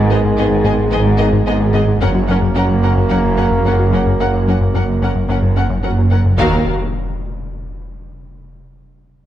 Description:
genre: cinematic, hybrid orchestral and electronic film score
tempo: 110 BPM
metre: 4/4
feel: straight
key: Eb minor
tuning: A4 = 442 Hz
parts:
  - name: mellow French horn section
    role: sustained chords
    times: 0.0-6.6 s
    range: Bb3 to Ab4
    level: -24 LUFS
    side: left 1 dB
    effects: none
  - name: warm trombone section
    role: sustained chords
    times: 0.0-6.6 s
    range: Db3 to Bb3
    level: -22 LUFS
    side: right 3 dB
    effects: none
  - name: plucky analog bass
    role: riff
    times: 0.0-6.3 s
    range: Gb2 to Ab3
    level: -19 LUFS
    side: left 3 dB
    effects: none
  - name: warm chamber double bass section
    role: bass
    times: 0.0-6.7 s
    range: Gb1 to Eb2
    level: -20 LUFS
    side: right 2 dB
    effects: none
  - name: warm symphonic cello section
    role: bass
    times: 0.0-6.7 s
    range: Eb2 to Ab2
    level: -18 LUFS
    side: right 2 dB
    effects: none
  - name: wide detuned saw bass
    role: bass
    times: 0.0-6.7 s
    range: Eb1 to Ab1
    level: -23 LUFS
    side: equal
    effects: chorus
  - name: rich symphonic violin section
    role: melody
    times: 0.1-6.7 s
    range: Eb5 to Gb5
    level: -26 LUFS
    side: left 3 dB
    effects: none
  - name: rich studio violin section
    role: second line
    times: 0.1-6.7 s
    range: Ab4 to Bb4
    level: -28 LUFS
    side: left 3 dB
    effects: none
  - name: warm symphonic viola section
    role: accompaniment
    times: 0.1-6.7 s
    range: Cb4 to Gb4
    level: -26 LUFS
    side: right 1 dB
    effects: none
  - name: impact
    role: sound effects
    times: 6.4-8.6 s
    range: none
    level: -24 LUFS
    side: left 1 dB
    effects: none
room: moderate scoring stage reverb, RT60 1.5 s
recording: dark, warm production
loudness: -12 LUFS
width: side -12 dB against mid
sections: 0.0-6.4 A section; 6.4-8.6 B section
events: impact 6.4-8.6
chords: 0.0 Abm; 2.0 Gb; 6.4 Ebm

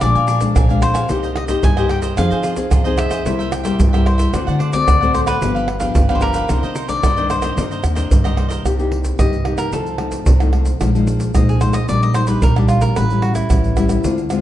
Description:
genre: samba and choro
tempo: 111 BPM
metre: 4/4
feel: straight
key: C minor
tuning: A4 = 440 Hz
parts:
  - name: cavaquinho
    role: melody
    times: 0.0-14.1 s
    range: D4 to Ab5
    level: -22 LUFS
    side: left 1 dB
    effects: none
  - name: cavaquinho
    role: accompaniment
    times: 0.0-8.6 s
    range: D4 to Ab5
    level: -26 LUFS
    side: right 2 dB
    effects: none
  - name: nylon-string guitar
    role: accompaniment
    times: 0.0-14.4 s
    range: F2 to Ab4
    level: -21 LUFS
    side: left 4 dB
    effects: none
  - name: upright bass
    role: bass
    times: 0.0-14.4 s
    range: G1 to F3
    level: -20 LUFS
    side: equal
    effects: none
  - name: tube shaker, surdo, pandeiro and tamborim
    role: percussion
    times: 0.0-14.4 s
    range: none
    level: -18 LUFS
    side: right 1 dB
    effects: none
room: moderate large studio reverb, RT60 1.4 s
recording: dark, warm production, nothing above 10.7 kHz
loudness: -14 LUFS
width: side -12 dB against mid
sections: 0.0-8.7 A section; 8.7-14.4 B section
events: cavaquinho solo 8.7-14.4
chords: 0.0 Bb7; 1.1 Cm7; 2.2 Fm7; 3.3 C7; 4.3 D7; 5.4 G7; 6.5 Cm9; 8.7 Cm7; 9.7 F7/C; 10.8 Bb7sus4; 11.9 Ebmaj7/Bb; 13.0 A7

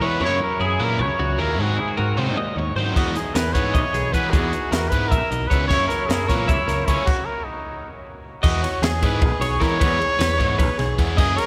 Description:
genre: math rock and midwest emo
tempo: 306 BPM (eighths)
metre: 7/8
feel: straight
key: E lydian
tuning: A4 = 440 Hz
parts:
  - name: clear trumpet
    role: melody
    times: 0.0-11.5 s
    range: D#4 to C#5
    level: -27 LUFS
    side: equal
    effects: none
  - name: twangy electric guitar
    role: accompaniment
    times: 0.0-7.1 s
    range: E2 to G#4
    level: -32 LUFS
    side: equal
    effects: none
  - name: twelve-string electric guitar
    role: arpeggios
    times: 0.0-11.5 s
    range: F#4 to E5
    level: -29 LUFS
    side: equal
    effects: none
  - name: crunchy overdriven guitar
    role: riff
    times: 0.0-11.4 s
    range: C#3 to G#4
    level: -32 LUFS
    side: equal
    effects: none
  - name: fingered electric bass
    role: bass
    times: 0.0-11.4 s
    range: B1 to E3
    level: -28 LUFS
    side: equal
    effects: none
  - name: compact cocktail drum kit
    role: drums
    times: 3.0-11.5 s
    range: crash cymbal, hi-hat, kick drum, ride cymbal, snare drum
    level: -25 LUFS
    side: equal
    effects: none
room: wet cathedral reverb, RT60 5.2 s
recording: recorded in a church or concert hall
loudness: -21 LUFS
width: mono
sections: 0.0-8.4 A section; 8.4-11.5 B section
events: stop 7.1-8.4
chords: 0.2 F#7; 1.6 G#7; 3.0 Emaj7; 5.7 F#7; 7.1 N.C.; 8.4 E

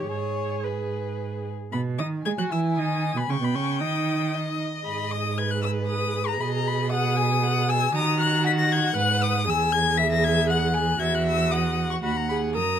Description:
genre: quick classical-period movement for string quartet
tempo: 116 BPM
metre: 3/4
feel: rubato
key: G# minor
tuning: A4 = 440 Hz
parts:
  - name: warm violin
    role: melody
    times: 0.0-12.8 s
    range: G4 to B6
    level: -27 LUFS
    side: left 6 dB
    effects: none
  - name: rich violin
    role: second line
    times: 0.0-12.8 s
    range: B4 to A#5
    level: -29 LUFS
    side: left 4 dB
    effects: none
  - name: rich viola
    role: accompaniment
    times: 0.0-12.8 s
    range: B3 to B4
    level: -30 LUFS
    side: right 4 dB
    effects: none
  - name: warm cello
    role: bass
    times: 0.0-12.8 s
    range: D#2 to G#3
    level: -26 LUFS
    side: right 4 dB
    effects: none
room: little or no reverb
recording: close, detailed microphones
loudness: -22 LUFS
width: side -9 dB against mid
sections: 0.0-1.7 A section; 1.7-12.8 A section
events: none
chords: 0.1 G#m; 1.7 G#m/B; 3.3 D#7; 4.9 G#m; 6.4 G#m/B; 7.9 D#m; 9.0 G#m; 9.5 E; 11.0 Emaj7sus2; 12.0 B/D#

